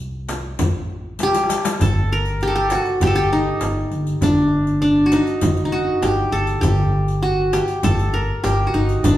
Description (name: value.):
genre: Arabic maqam ensemble.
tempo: 99 BPM.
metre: 4/4.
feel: straight.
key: G maqam nahawand.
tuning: A4 = 440 Hz.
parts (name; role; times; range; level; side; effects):
qanun; melody; 0.0-9.2 s; D4 to C5; -18 LUFS; equal; none.
upright bass; bass; 0.0-9.2 s; G1 to C2; -22 LUFS; equal; none.
darbuka; percussion; 0.3-9.2 s; none; -26 LUFS; left 1 dB; none.
frame drum; percussion; 0.3-9.2 s; none; -25 LUFS; right 1 dB; none.
riq; percussion; 0.3-9.2 s; none; -31 LUFS; left 3 dB; none.
room: wet large studio reverb, RT60 1.4 s.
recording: band playing live in one room.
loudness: -16 LUFS.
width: side -13 dB against mid.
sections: 0.0-1.8 A section; 1.8-9.2 B section.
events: drum fill 1.2-1.8.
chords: none.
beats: 0.59 1.19 | 1.80 2.40 3.00 3.61 | 4.21 4.82 5.42 6.02 | 6.62 7.23 7.83 8.44 | 9.04.